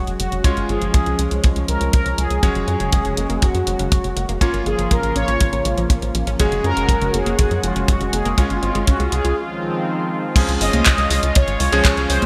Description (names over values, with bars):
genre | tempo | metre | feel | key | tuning
italo disco | 121 BPM | 4/4 | straight | unclear | A4 = 440 Hz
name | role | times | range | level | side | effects
analog synth brass | melody | 0.0-12.3 s | F4 to Eb5 | -26 LUFS | equal | chorus, cassette tape, digital delay
lush unison pad | sustained chords | 0.0-12.3 s | Db3 to C6 | -28 LUFS | equal | chorus
bright electric grand piano | stabs | 0.0-12.3 s | F3 to Db5 | -29 LUFS | equal | low-pass filter
tight sequencer bass | bass | 0.0-12.3 s | Gb1 to Gb2 | -25 LUFS | equal | none
house drum kit | drums | 0.1-12.3 s | congas, crash cymbal, handclaps, hi-hat | -25 LUFS | equal | gated reverb
kick drum | drums | 0.4-11.9 s | none | -19 LUFS | equal | none
unison pluck | arpeggios | 2.4-9.3 s | Db3 to F4 | -31 LUFS | equal | digital delay
room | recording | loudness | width
moderate lush hall reverb, RT60 1.9 s | bright 1980s-style digital production | -18 LUFS | mono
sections
0.0-10.4 A section; 10.4-12.3 B section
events
filter sweep on analog synth pad 0.0-10.4; break 9.4-10.4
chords
0.4 Db; 2.4 Gbsus2; 4.4 Bbmadd9; 6.4 Gbsus2; 8.4 Db; 9.4 Fm7; 10.4 Db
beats
| 0.45 0.94 1.44 1.93 | 2.43 2.92 3.42 3.92 | 4.41 4.91 5.40 5.90 | 6.40 6.89 7.39 7.88 | 8.38 8.88 9.37 9.87 | 10.36 10.86 11.36 11.85